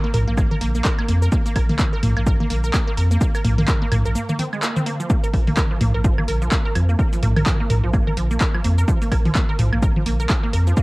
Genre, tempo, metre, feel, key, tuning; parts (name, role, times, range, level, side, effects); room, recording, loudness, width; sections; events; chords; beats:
minimal techno; 127 BPM; 4/4; swing 58% on 16ths; A4 = 437 Hz
resonant blip pluck; riff; 0.0-10.8 s; F3 to Bb4; -26 LUFS; right 1 dB; chorus, sidechain pumping, cassette tape, analog delay
saturated sub bass; bass; 0.1-10.7 s; Bb1 to F2; -20 LUFS; equal; sidechain pumping
punchy analog drum machine; drums; 0.1-10.8 s; handclaps, hi-hat, shaker; -28 LUFS; equal; overdrive
electronic toms and woodblock; percussion; 0.1-10.4 s; -23 LUFS; equal; analog delay
electronic kick drum; drums; 0.4-10.8 s; -20 LUFS; equal; overdrive
digital ambience; home recording on cassette; -17 LUFS; side -23 dB against mid
0.0-10.8 A section
break 4.2-5.1
0.0 Bb5
0.38 0.85 | 1.32 1.79 2.27 2.74 | 3.21 3.68 4.16 4.63 | 5.10 5.57 6.04 6.52 | 6.99 7.46 7.93 8.41 | 8.88 9.35 9.82 10.30 | 10.77